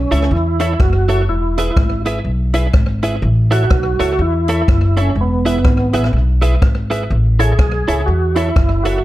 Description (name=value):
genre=ska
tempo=124 BPM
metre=4/4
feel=swing 60% on 8ths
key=A major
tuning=A4 = 444 Hz
part: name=overdriven tonewheel organ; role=melody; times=0.0-9.0 s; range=B3 to G#4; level=-19 LUFS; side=right 1 dB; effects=chorus vibrato, slow rotary speaker, slapback echo
part: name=upright bass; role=bass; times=0.0-9.0 s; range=E1 to E2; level=-16 LUFS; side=equal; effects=none
part: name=clean electric guitar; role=accompaniment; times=0.1-9.0 s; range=E4 to E5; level=-21 LUFS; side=right 2 dB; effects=analog chorus, slapback echo
part: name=swinging big-band drum kit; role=drums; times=0.1-8.9 s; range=hi-hat, kick drum, rim click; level=-16 LUFS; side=equal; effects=slapback echo
room=small room ambience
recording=none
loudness=-13 LUFS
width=side -15 dB against mid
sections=0.0-9.0 A section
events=none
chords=0.0 A; 1.3 E; 3.2 A; 5.2 E; 7.1 A